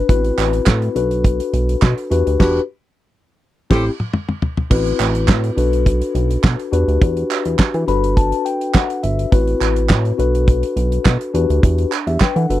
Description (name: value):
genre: early-eighties boogie funk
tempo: 104 BPM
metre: 4/4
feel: straight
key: A dorian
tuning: A4 = 440 Hz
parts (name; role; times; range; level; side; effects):
- mellow tine electric piano; accompaniment; 0.0-12.6 s; B3 to B5; -19 LUFS; left 4 dB; slow stereo tremolo
- chorused synth bass; bass; 0.0-12.6 s; E1 to E3; -18 LUFS; equal; none
- damped 70s drum kit; drums; 0.1-12.6 s; crash cymbal, handclaps, hi-hat, kick drum, snare drum, toms; -15 LUFS; right 1 dB; none
- group handclap; percussion; 0.4-12.3 s; none; -23 LUFS; right 15 dB; none
- warm horn section; second line; 3.7-3.9 s; G4 to C5; -21 LUFS; right 1 dB; none
room: little or no reverb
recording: dry, close 1970s-style studio recording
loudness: -14 LUFS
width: side -14 dB against mid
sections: 0.0-4.7 A section; 4.7-12.6 A section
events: band accent 2.4-4.7; drum fill 3.6-4.7; tine electric piano fill 7.6-9.3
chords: 0.1 Am69; 1.0 Bm7; 2.1 Em9; 3.3 Am7; 4.7 Am69; 5.6 Bm7; 6.7 Em9; 7.9 Gmaj7; 9.3 Am69; 10.2 Bm7; 11.3 Em9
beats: | 0.09 0.67 1.25 1.82 | 2.40 2.98 3.55 4.13 | 4.71 5.28 5.86 6.44 | 7.01 7.59 8.17 8.75 | 9.32 9.90 10.48 11.05 | 11.63 12.21